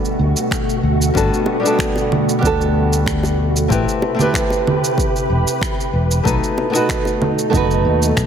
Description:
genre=sunset chillout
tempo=94 BPM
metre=4/4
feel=straight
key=G major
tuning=A4 = 440 Hz
part: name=nylon-string guitar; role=accompaniment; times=0.0-8.3 s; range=G3 to B4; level=-20 LUFS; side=moving between left 6 dB and right 6 dB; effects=auto-pan, tape echo
part: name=soft string machine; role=sustained chords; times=0.0-8.3 s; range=B2 to B4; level=-21 LUFS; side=equal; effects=ensemble chorus
part: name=electronic shaker, finger snaps and congas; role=drums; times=0.0-8.3 s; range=none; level=-23 LUFS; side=right 3 dB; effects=overdrive
part: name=fretless electric bass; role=bass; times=0.2-8.3 s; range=E1 to D#2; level=-17 LUFS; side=equal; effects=lush chorus
part: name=electronic kick drum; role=drums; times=0.5-8.3 s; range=none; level=-23 LUFS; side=equal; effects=overdrive
part: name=bongos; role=percussion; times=1.5-7.2 s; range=none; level=-25 LUFS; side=equal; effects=none
room=moderate lush hall reverb, RT60 1.8 s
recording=none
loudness=-15 LUFS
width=side -8 dB against mid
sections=0.0-8.3 A section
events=none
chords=0.0 Gmaj9; 3.7 Am9; 6.3 B7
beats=0.51 | 1.15 1.78 2.42 3.06 | 3.70 4.34 4.98 5.61 | 6.25 6.89 7.53 8.17

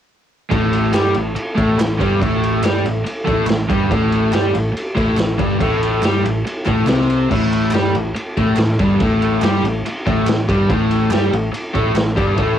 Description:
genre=garage rock duo or trio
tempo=141 BPM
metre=4/4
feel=straight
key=A minor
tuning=A4 = 440 Hz
part: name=raw garage guitar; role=riff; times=0.5-12.6 s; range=G2 to G4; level=-17 LUFS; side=left 1 dB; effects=overdrive, cassette tape
part: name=hollow-body short-scale picked electric bass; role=bass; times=0.5-12.6 s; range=G1 to G2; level=-21 LUFS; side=equal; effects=tube saturation
part: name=raw garage drum kit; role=drums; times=0.5-12.5 s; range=crash cymbal, kick drum, ride cymbal, snare drum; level=-20 LUFS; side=equal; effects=cassette tape
part: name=group handclap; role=percussion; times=0.9-12.1 s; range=none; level=-31 LUFS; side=right 4 dB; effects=none
room=light reverb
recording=home recording on cassette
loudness=-15 LUFS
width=side -10 dB against mid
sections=0.5-12.6 A section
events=none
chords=none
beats=| 0.51 0.93 1.35 1.78 | 2.20 2.63 3.05 3.48 | 3.90 4.33 4.75 5.18 | 5.60 6.03 6.45 6.88 | 7.30 7.73 8.15 8.58 | 9.00 9.43 9.85 10.27 | 10.70 11.12 11.54 11.96 | 12.38

